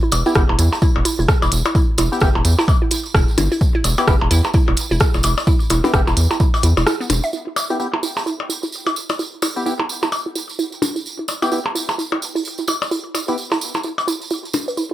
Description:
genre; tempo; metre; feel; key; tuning
minimal techno; 129 BPM; 4/4; swing 60% on 16ths; E minor; A4 = 440 Hz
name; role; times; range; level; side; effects
hollow square pluck; riff; 0.0-14.9 s; B3 to E5; -24 LUFS; right 2 dB; chorus, sidechain pumping, dub echo
rubbery square bass; bass; 0.1-7.2 s; E1 to E2; -18 LUFS; equal; sidechain pumping
minimal click drum kit; drums; 0.1-7.2 s; hi-hat, rim click; -20 LUFS; right 1 dB; overdrive
percussion blips; percussion; 0.1-14.7 s; none; -23 LUFS; left 2 dB; dub echo
tambourine; percussion; 0.1-14.9 s; none; -27 LUFS; right 5 dB; none
percussive organ stab; stabs; 0.3-13.4 s; B3 to G4; -26 LUFS; left 2 dB; analog chorus, dub echo
electronic kick drum; drums; 0.4-6.5 s; none; -17 LUFS; equal; none
room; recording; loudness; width
little or no reverb; none; -16 LUFS; side -14 dB against mid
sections
0.0-7.3 A section; 7.3-14.9 B section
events
break 6.9-7.3; filter sweep on synth arpeggio sound 7.3-14.9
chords
0.0 Em

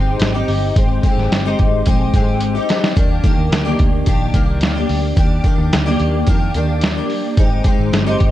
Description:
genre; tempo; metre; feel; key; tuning
indie pop, bedroom pop; 109 BPM; 4/4; straight; Eb major; A4 = 440 Hz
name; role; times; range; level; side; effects
picked steel-string acoustic guitar; accompaniment; 0.0-8.3 s; Eb3 to G4; -19 LUFS; left 2 dB; ensemble chorus, warbly pitch drift
vintage muted picked electric bass; bass; 0.0-8.3 s; G1 to F2; -19 LUFS; equal; none
lo-fi sampler-style drum kit; drums; 0.2-8.3 s; hi-hat, kick drum, snare drum; -16 LUFS; equal; vintage 12-bit sampler grit
room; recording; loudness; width
light reverb, digital ambience; dark, warm production; -13 LUFS; side -14 dB against mid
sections
0.0-8.3 A section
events
drum fill 2.4-3.0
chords
0.0 Abmaj7; 3.0 Ebmaj7; 7.4 Abmaj7

